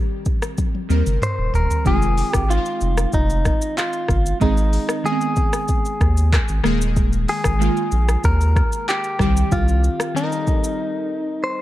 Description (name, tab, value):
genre	afrobeats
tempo	94 BPM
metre	4/4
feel	straight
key	F minor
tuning	A4 = 440 Hz
part	glassy digital keys	accompaniment	0.0-11.6 s	D3 to Bb4	-25 LUFS	right 1 dB	chorus
part	afro-pop drum kit	drums	0.3-10.8 s	handclaps, hi-hat, kick drum, rim click, shaker, toms	-21 LUFS	equal	none
part	saturated sub bass	bass	0.9-9.9 s	Eb1 to Eb2	-18 LUFS	equal	none
part	direct-recorded clean electric guitar	melody	1.2-11.6 s	Eb4 to C5	-24 LUFS	left 1 dB	spring reverb, digital delay
room	little or no reverb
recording	dark, warm production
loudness	-17 LUFS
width	side -14 dB against mid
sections	0.0-1.9 A section; 1.9-11.6 B section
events	drum fill 0.6-1.9; break 10.8-11.6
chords	0.0 Cm; 1.9 Fm7; 4.4 Ab; 6.6 Ebsus4; 9.2 Cm